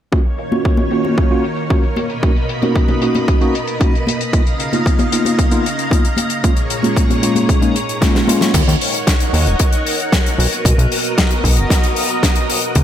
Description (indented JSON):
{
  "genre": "nu-disco, nu disco",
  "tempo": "114 BPM",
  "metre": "4/4",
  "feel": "straight",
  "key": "Eb minor",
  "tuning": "A4 = 439 Hz",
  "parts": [
    { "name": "mellow tine electric piano", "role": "accompaniment", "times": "0.1-8.5 s", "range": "Ab3 to Gb4", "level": "-19 LUFS", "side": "equal", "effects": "medium stereo tremolo, vintage 12-bit sampler grit, low-pass filter, ping-pong delay" },
    { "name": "string machine, full ensemble", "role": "sustained chords", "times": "0.1-12.8 s", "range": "Bb2 to B5", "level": "-21 LUFS", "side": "equal", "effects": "ensemble chorus, sidechain pumping" },
    { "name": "electronic kick drum", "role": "drums", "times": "0.1-12.8 s", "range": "none", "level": "-15 LUFS", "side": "equal", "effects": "overdrive" },
    { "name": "gated 80s drum kit", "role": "drums", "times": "0.1-12.8 s", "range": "crash cymbal, hi-hat, snare drum", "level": "-20 LUFS", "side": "left 2 dB", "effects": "low-pass filter on hats, low-pass filter on cymbals, low-pass filter on snare, low-pass filter on room" },
    { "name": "congas", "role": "percussion", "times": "0.5-8.4 s", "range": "none", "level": "-23 LUFS", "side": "left 2 dB", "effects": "none" },
    { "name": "fat analog bass", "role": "bass", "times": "8.5-12.8 s", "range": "Eb1 to Eb2", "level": "-15 LUFS", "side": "equal", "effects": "none" }
  ],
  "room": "light reverb, studio ambience",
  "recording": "none",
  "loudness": "-13 LUFS",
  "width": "side -10 dB against mid",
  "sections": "0.1-8.5 A section; 8.5-12.8 B section",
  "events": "filter sweep on tine electric piano 0.1-8.5; drum fill 8.0-8.5",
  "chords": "0.1 Ebm7; 2.0 Bmaj7; 4.3 Db13; 6.4 Bbm7; 8.5 Ebm7; 10.4 Bmaj7"
}